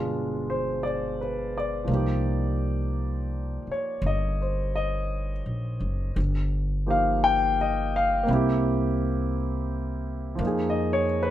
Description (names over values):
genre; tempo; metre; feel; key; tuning
jazz ballad; 56 BPM; 4/4; swing 66% on 8ths; unclear; A4 = 440 Hz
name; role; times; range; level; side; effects
warm concert grand piano; accompaniment; 0.0-11.3 s; B2 to G5; -26 LUFS; left 1 dB; none
upright bass; bass; 0.0-11.3 s; Gb1 to F2; -28 LUFS; equal; none
room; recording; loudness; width
light reverb; band playing live in one room; -24 LUFS; side -12 dB against mid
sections
0.0-11.3 A section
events
none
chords
0.0 G7b9; 1.9 Cm7; 6.2 Ebadd9/G; 8.3 C7; 10.4 Fm7